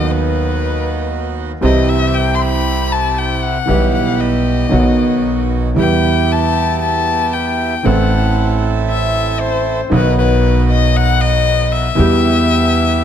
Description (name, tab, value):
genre	tango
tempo	116 BPM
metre	4/4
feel	rubato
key	E harmonic minor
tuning	A4 = 436 Hz
part	rich violin	second line	0.0-13.0 s	B4 to C6	-19 LUFS	left 7 dB	none
part	clear concert grand piano	accompaniment	0.0-13.0 s	A1 to A4	-16 LUFS	equal	none
part	bandoneon	stabs	0.0-13.0 s	B3 to A4	-22 LUFS	right 8 dB	none
part	upright bass	bass	0.0-13.0 s	A1 to E2	-18 LUFS	right 1 dB	none
room	moderate concert hall reverb, RT60 2.4 s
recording	close, detailed microphones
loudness	-12 LUFS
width	side -9 dB against mid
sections	0.0-13.0 A section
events	violin solo 0.0-13.0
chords	0.0 B/D#; 1.6 C; 3.7 Em/B; 4.7 B; 5.8 Em; 7.9 Am; 9.9 B; 12.0 Em